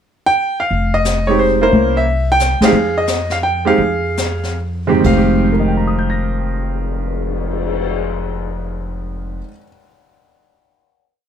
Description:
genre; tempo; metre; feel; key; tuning
jazz piano trio; 124-178 BPM; 3/4; swing 65% on 8ths; F minor; A4 = 439 Hz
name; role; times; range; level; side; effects
clear baby grand piano; melody; 0.3-9.7 s; F2 to Bb6; -16 LUFS; right 2 dB; plate reverb
upright bass; bass; 0.7-9.4 s; F1 to F2; -19 LUFS; left 1 dB; none
jazz brush drum kit; drums; 0.7-7.8 s; brushed snare drum, crash cymbal, cymbal swell, hi-hat, kick drum, ride cymbal, snare drum; -24 LUFS; left 5 dB; none
room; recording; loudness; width
light reverb; none; -14 LUFS; side -8 dB against mid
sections
0.0-0.7 pickup bar; 0.7-5.0 A section; 5.0-7.9 final chord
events
band accent 2.6; slowing down 2.7-5.0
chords
0.0 N.C.; 0.7 Fm9; 1.7 C7b9; 2.7 Fm9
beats
0.04 0.38 | 0.71 1.05 1.39 | 1.73 2.06 2.40 | 2.73 3.07 3.42 | 3.79 4.17 4.59 | 5.04 5.53 6.01 | 6.49 6.97 7.45

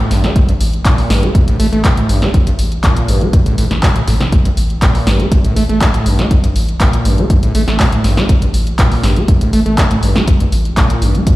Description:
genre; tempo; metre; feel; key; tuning
acid house; 121 BPM; 4/4; straight; unclear; A4 = 436 Hz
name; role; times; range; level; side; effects
overdriven acid bass; riff; 0.0-11.3 s; A1 to A3; -16 LUFS; equal; distortion, lush chorus, cassette tape, sidechain pumping, tape echo
round analog bass; bass; 0.1-11.2 s; A1; -15 LUFS; equal; sidechain pumping
punchy analog drum machine; drums; 0.1-11.4 s; handclaps, hi-hat, snare drum; -19 LUFS; equal; none
electronic kick drum; drums; 0.4-11.4 s; none; -12 LUFS; equal; none
room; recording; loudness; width
light reverb; played on a big sound system in a bare room, large studio reverb; -10 LUFS; side -17 dB against mid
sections
0.0-11.4 A section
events
none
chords
none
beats
| 0.36 0.85 1.35 1.84 | 2.34 2.84 3.33 3.83 | 4.33 4.82 5.32 5.81 | 6.31 6.80 7.30 7.80 | 8.29 8.79 9.28 9.78 | 10.28 10.77 11.27

